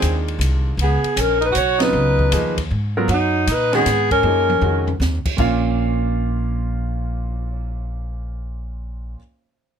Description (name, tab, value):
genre	modal jazz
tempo	157 BPM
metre	3/4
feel	swing 66% on 8ths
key	Bb phrygian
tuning	A4 = 439 Hz
part	breathy alto saxophone	melody	0.0-5.0 s	Eb4 to Db5	-19 LUFS	left 3 dB	none
part	breathy tenor saxophone	second line	0.0-5.0 s	Gb3 to Gb4	-23 LUFS	right 8 dB	none
part	warm concert grand piano	accompaniment	0.0-9.2 s	Bb2 to F5	-24 LUFS	right 4 dB	none
part	upright bass	bass	0.0-9.1 s	Bb1 to Bb2	-21 LUFS	equal	none
part	open jazz drum kit	drums	0.0-7.6 s	crash cymbal, cymbal swell, hi-hat, kick drum, ride cymbal, snare drum, toms	-26 LUFS	equal	none
room	little or no reverb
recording	close, detailed microphones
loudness	-17 LUFS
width	side -8 dB against mid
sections	0.0-5.4 A section; 5.4-7.7 B section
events	band accent 1.8; drum fill 4.2-5.0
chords	0.0 Bb9sus4 (rootless); 0.8 Db13sus4; 5.4 Bbm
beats	0.03 0.41 | 0.79 1.18 1.56 | 1.94 2.33 2.71 | 3.09 3.47 3.85 | 4.24 4.62 5.00 | 5.38 5.77 6.15 | 6.53 6.91 7.29